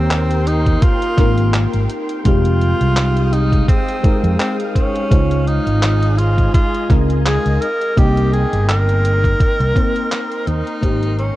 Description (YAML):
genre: vaporwave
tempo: 84 BPM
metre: 4/4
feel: swing 55% on 16ths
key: F minor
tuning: A4 = 439 Hz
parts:
  - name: breathy tenor saxophone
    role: melody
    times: 0.0-11.4 s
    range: C4 to Bb4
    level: -21 LUFS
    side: right 1 dB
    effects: tape echo
  - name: mellow FM electric piano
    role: accompaniment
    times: 0.0-11.4 s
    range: Ab3 to G5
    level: -22 LUFS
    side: left 2 dB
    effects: wide subtle chorus
  - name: soft string machine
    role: sustained chords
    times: 0.0-11.4 s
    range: Ab3 to Eb6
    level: -28 LUFS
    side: equal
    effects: ensemble chorus
  - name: mellow fretless electric bass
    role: bass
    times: 0.0-11.3 s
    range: F1 to F2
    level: -16 LUFS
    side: equal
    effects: wide subtle chorus
  - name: detuned 8-bit digital drum machine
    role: drums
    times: 0.1-11.3 s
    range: handclaps, hi-hat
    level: -25 LUFS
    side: equal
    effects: small room ambience
  - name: electronic kick drum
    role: drums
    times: 0.7-11.0 s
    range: none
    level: -15 LUFS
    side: equal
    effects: small room ambience
room: little or no reverb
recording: cassette tape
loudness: -13 LUFS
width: side -16 dB against mid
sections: 0.0-11.4 A section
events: fade-out 8.9-11.4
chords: 0.0 Abmaj9; 2.3 Fm9; 5.1 Dbmaj9; 7.6 Cm7; 10.8 Abmaj9